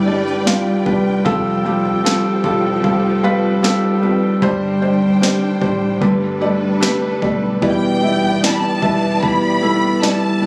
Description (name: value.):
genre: pop ballad.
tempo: 75 BPM.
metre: 4/4.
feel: straight.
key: unclear.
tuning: A4 = 438 Hz.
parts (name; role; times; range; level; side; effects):
warm studio violin section; melody; 0.0-0.8, 7.6-10.5 s; D5 to B5; -24 LUFS; equal; digital delay.
felt-muted upright piano; accompaniment; 0.0-10.5 s; G2 to E5; -19 LUFS; equal; none.
warm studio string section; sustained chords; 0.0-10.5 s; E3 to G5; -26 LUFS; equal; none.
nylon-string guitar; arpeggios; 0.0-10.5 s; E3 to C5; -27 LUFS; equal; digital delay.
vintage muted fingered electric bass; bass; 0.0-10.5 s; E1 to C2; -32 LUFS; equal; none.
smooth R&B drum kit; drums; 0.5-10.5 s; kick drum, snare drum, toms; -22 LUFS; equal; none.
room: little or no reverb.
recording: recorded on a phone in the room, studio reverb, compression.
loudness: -16 LUFS.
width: mono.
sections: 0.0-10.5 A section.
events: none.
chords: 0.0 G; 1.3 Fadd9; 4.4 Gsus4; 6.0 Gadd9; 7.6 Em7.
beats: 0.47 | 1.26 2.05 2.84 3.63 | 4.42 5.22 6.01 6.82 | 7.62 8.43 9.22 10.02.